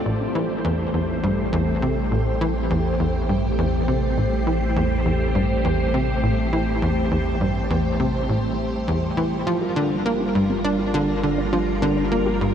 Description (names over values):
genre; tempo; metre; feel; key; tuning
ambient; 102 BPM; 4/4; straight; unclear; A4 = 441 Hz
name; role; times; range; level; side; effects
warm sub bass; bass; 0.0-12.5 s; G1 to A1; -27 LUFS; equal; none
string machine, full ensemble; sustained chords; 0.1-12.5 s; G3 to C5; -24 LUFS; equal; ensemble chorus
tight sequencer bass; riff; 0.1-12.5 s; A1 to D4; -22 LUFS; equal; wide subtle chorus, tape echo
wide unison pluck; arpeggios; 9.5-12.3 s; C4 to G4; -33 LUFS; left 1 dB; none
room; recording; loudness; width
wet huge ambient reverb, RT60 8.4 s; dark, warm production; -19 LUFS; side -8 dB against mid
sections
0.1-12.5 A section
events
none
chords
0.1 Am7; 9.5 Gm7